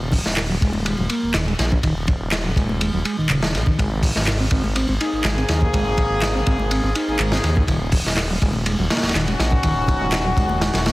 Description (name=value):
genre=breakbeat, breaks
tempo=123 BPM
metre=4/4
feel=straight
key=Eb dorian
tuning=A4 = 441 Hz
part: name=detuned saw bass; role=bass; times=0.0-10.9 s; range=Eb1 to Eb2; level=-23 LUFS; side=equal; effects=tube saturation
part: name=crunchy breakbeat drum kit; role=drums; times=0.1-10.9 s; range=hi-hat, kick drum, ride cymbal, snare drum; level=-21 LUFS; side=equal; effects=none
part: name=congas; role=percussion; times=0.1-10.6 s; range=none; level=-30 LUFS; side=left 1 dB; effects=none
part: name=electronic handclaps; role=drums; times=0.4-10.2 s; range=none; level=-29 LUFS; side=equal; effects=none
part: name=mellow tonewheel organ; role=riff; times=0.5-10.9 s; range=Db3 to Eb4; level=-25 LUFS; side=equal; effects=slow rotary speaker, vintage 12-bit sampler grit, digital delay
part: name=clear brass ensemble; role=stabs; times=5.0-10.9 s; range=Bb3 to Ab4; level=-24 LUFS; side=left 1 dB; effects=digital delay
room=light reverb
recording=heavily compressed radio sound, multiband compression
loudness=-17 LUFS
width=side -19 dB against mid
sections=0.0-10.9 A section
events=none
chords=0.0 Eb5; 3.8 Abadd9; 7.7 Ebm7